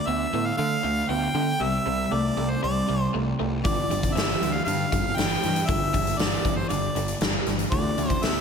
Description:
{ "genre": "classic rock", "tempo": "118 BPM", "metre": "4/4", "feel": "straight", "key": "unclear", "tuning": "A4 = 441 Hz", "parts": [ { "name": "clear harmonica", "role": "melody", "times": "0.0-8.4 s", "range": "C5 to G5", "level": "-28 LUFS", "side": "equal", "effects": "analog delay" }, { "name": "overdriven electric guitar", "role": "riff", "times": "0.0-8.4 s", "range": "G2 to B3", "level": "-31 LUFS", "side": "left 11 dB", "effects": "phaser" }, { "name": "overdriven electric guitar", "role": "riff", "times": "0.0-8.4 s", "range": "G2 to B3", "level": "-30 LUFS", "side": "right 12 dB", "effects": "none" }, { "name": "fuzz picked electric bass", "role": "bass", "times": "0.1-8.4 s", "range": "G1 to D3", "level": "-30 LUFS", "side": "equal", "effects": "overdrive" }, { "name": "huge arena drum kit", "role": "drums", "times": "3.6-8.4 s", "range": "hi-hat, kick drum, snare drum", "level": "-26 LUFS", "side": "equal", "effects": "none" } ], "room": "moderate lush hall reverb, RT60 1.9 s, small room ambience", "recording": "big arena sound", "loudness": "-22 LUFS", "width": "side -6 dB against mid", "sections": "0.0-8.4 A section", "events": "none", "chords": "0.0 Dm; 1.6 C; 3.7 G5; 7.7 D5", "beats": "0.08 0.59 1.10 | 1.61 2.12 2.63 3.14 | 3.65 4.16 4.67 5.18 | 5.69 6.20 6.71 7.22 | 7.73 8.23" }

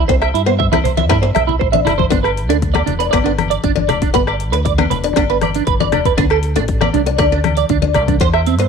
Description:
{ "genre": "highlife guitar band", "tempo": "118 BPM", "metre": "4/4", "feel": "straight", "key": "G major", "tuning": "A4 = 440 Hz", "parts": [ { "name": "electric guitar at the edge of break-up", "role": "arpeggios", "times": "0.0-8.7 s", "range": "C4 to E5", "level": "-17 LUFS", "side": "right 14 dB", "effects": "ensemble chorus, slapback echo" }, { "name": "deep dub fingered electric bass", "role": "bass", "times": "0.0-8.7 s", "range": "E1 to G2", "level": "-19 LUFS", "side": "equal", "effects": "none" }, { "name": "picked acoustic archtop guitar", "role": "accompaniment", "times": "0.1-8.7 s", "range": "A3 to E4", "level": "-20 LUFS", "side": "left 12 dB", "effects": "none" }, { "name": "house drum kit", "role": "drums", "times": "0.1-8.7 s", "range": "hi-hat, kick drum, rim click", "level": "-20 LUFS", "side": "left 2 dB", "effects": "none" }, { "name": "agogo bells", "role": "percussion", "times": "0.2-8.5 s", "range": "none", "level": "-25 LUFS", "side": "left 15 dB", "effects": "none" }, { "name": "congas", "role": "percussion", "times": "0.7-8.2 s", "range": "none", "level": "-22 LUFS", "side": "left 10 dB", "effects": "none" } ], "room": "light reverb, studio reverb", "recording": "1960s-style stereo with parts hard left and right", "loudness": "-13 LUFS", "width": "side -6 dB against mid", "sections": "0.0-2.1 A section; 2.1-8.7 B section", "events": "none", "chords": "0.0 C; 2.1 G; 6.2 D5", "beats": "| 0.09 0.59 1.10 1.61 | 2.12 2.63 3.13 3.64 | 4.15 4.66 5.17 5.67 | 6.18 6.69 7.20 7.70 | 8.21" }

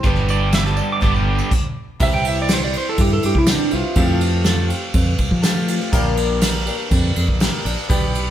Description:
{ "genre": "folk rock and heartland rock", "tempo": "122 BPM", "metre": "4/4", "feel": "straight", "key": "C major", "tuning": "A4 = 442 Hz", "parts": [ { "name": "pedal steel guitar", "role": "second line", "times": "0.0-4.7 s", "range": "D4 to D6", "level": "-23 LUFS", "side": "right 3 dB", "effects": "none" }, { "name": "picked twelve-string acoustic guitar", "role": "accompaniment", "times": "0.0-8.3 s", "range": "G2 to B4", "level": "-25 LUFS", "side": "left 4 dB", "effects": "none" }, { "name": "warm upright piano", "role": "accompaniment", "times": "0.0-8.3 s", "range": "D4 to G5", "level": "-31 LUFS", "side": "right 3 dB", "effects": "none" }, { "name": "crunchy overdriven guitar", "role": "riff", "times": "0.0-1.5 s", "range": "G2 to G4", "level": "-23 LUFS", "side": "right 2 dB", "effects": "none" }, { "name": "fingered electric bass", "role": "bass", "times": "0.0-8.3 s", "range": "G1 to F3", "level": "-20 LUFS", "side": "equal", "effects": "none" }, { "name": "soft brush drum kit", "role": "drums", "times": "0.0-8.3 s", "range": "crash cymbal, hi-hat, kick drum, ride cymbal, snare drum", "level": "-19 LUFS", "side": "equal", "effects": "none" }, { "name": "tambourine", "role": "percussion", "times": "0.0-7.5 s", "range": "none", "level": "-33 LUFS", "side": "right 5 dB", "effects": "none" } ], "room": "moderate stone room reverb, RT60 1.4 s", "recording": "band playing live in one room", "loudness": "-16 LUFS", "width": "side -11 dB against mid", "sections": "0.0-2.0 A section; 2.0-8.3 B section", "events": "pedal steel guitar solo 0.0-2.0; stop 1.5-2.0", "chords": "0.0 G; 2.0 C; 4.0 Fadd9; 5.9 Bb6", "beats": "| 0.05 0.54 1.03 1.52 | 2.01 2.50 2.99 3.48 | 3.97 4.46 4.95 5.44 | 5.93 6.43 6.92 7.41 | 7.90" }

